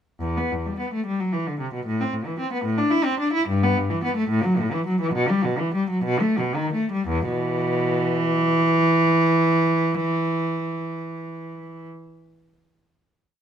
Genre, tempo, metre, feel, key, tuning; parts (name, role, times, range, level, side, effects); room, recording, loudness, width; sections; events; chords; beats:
classical, baroque-style suite movement for unaccompanied cello; 54-77 BPM (dotted quarters); 6/8; rubato; E minor; A4 = 440 Hz
rich cello; solo; 0.2-11.9 s; E2 to E4; -20 LUFS; equal
light reverb; close, detailed microphones; -20 LUFS; side -8 dB against mid
0.2-7.1 A section; 7.1-11.1 final chord
slowing down 2.6-7.1
0.2 Em; 1.9 Am; 3.5 Em/G; 4.3 F#m7/A; 5.1 Em/B; 6.0 B7; 7.1 E5
| 0.20 1.06 | 1.85 2.64 | 3.48 4.30 | 5.13 6.04 | 7.08 8.09 | 9.12 10.12